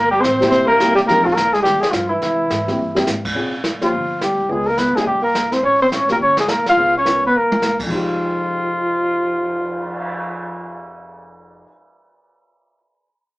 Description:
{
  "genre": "jazz, small-group swing and bop",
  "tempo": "212 BPM",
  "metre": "4/4",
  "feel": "swing 62% on 8ths",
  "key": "unclear",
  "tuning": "A4 = 439 Hz",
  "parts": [
    { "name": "mellow trumpet", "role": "melody", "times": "0.0-10.9 s", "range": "E4 to F5", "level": "-17 LUFS", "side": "equal", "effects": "none" },
    { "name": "breathy alto saxophone", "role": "second line", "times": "0.0-10.9 s", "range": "E3 to F4", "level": "-22 LUFS", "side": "right 1 dB", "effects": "none" },
    { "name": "upright bass", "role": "bass", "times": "0.0-11.6 s", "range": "F1 to C3", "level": "-33 LUFS", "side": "equal", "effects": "none" },
    { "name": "jazz brush drum kit", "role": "drums", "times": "0.2-10.1 s", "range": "brushed snare drum, crash cymbal, cymbal swell, hi-hat, kick drum, snare drum, toms", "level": "-25 LUFS", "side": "equal", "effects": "none" },
    { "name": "dark upright piano", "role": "accompaniment", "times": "0.4-11.7 s", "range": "F2 to Bb4", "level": "-23 LUFS", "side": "equal", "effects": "none" }
  ],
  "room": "moderate studio ambience, RT60 0.4 s",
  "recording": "band playing live in one room, small speaker sound",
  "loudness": "-15 LUFS",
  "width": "side -20 dB against mid",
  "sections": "0.0-3.4 A section; 3.4-7.9 B section; 7.9-10.2 C section",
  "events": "drum fill 2.8, 7.3",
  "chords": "0.0 C7; 1.1 Fm9; 2.2 C7; 3.4 Bbm9; 3.9 G7sus4; 4.5 Db7; 5.1 Gmadd11/C; 5.6 Bbm7; 6.2 Bbm13/G; 6.8 Db7; 7.3 Bbsus2/C; 7.9 Fm9"
}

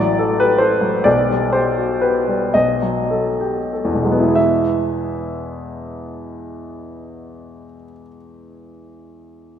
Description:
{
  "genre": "classical, romantic character piece for solo piano",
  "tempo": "30-50 BPM (dotted quarters)",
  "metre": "6/8",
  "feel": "rubato",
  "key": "unclear",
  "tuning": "A4 = 440 Hz",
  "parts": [
    { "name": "clear grand piano", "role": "solo", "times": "0.0-9.6 s", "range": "A1 to E5", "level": "-16 LUFS", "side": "left 1 dB", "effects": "none" }
  ],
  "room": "wet concert hall reverb, RT60 2.5 s",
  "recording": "none",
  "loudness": "-15 LUFS",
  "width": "side -9 dB against mid",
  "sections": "0.0-4.4 A section; 4.4-9.6 B section",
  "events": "slowing down 0.0-4.4",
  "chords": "0.0 Am11; 1.1 Gadd11/B; 2.5 B7; 4.4 E"
}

